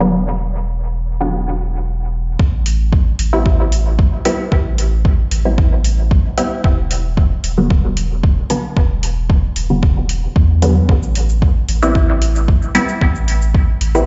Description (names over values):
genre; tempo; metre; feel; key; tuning
dub techno; 113 BPM; 4/4; straight; A dorian; A4 = 436 Hz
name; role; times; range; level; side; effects
filtered dub chord stab; stabs; 0.0-14.1 s; D3 to E4; -21 LUFS; equal; phaser, sidechain pumping, dub echo
pure sine sub bass; bass; 0.0-14.1 s; E1 to E2; -19 LUFS; equal; sidechain pumping
electronic kick drum; drums; 2.4-13.7 s; none; -16 LUFS; equal; overdrive, small room ambience
electronic hi-hat and cabasa; drums; 2.7-14.1 s; none; -28 LUFS; equal; overdrive, low-pass filter on hats, small room ambience, low-pass filter on perc
room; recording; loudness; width
light reverb; played on a big sound system in a bare room, large studio reverb, nothing above 7.8 kHz; -16 LUFS; mono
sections
0.0-2.4 A section; 2.4-14.1 B section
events
none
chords
0.0 Em7; 2.4 Am7; 6.6 Em7; 10.9 Am7